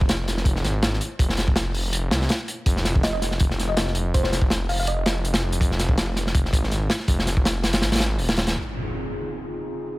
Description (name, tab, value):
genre	drum and bass, jungle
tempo	163 BPM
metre	4/4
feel	swing 54% on 16ths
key	F minor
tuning	A4 = 441 Hz
part	detuned saw bass	bass	0.0-8.5 s	Eb1 to C2	-25 LUFS	equal	none
part	crunchy breakbeat drum kit	drums	0.0-8.6 s	hi-hat, kick drum, snare drum	-22 LUFS	equal	none
part	thumb-piano-like synth pluck	melody	3.0-5.2 s	C5 to F5	-32 LUFS	equal	chorus, dub echo
part	airy breathy pad	sustained chords	8.6-10.0 s	C4 to Ab4	-31 LUFS	equal	chorus, vintage 12-bit sampler grit
part	impact	sound effects	8.6-10.0 s	none	-32 LUFS	equal	none
room	small room ambience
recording	none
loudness	-20 LUFS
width	side -19 dB against mid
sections	0.0-8.6 A section; 8.6-10.0 B section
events	drop 0.0-8.6; kick drops out 7.8-8.6; impact 8.6-10.0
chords	0.0 Fm; 8.6 Fm7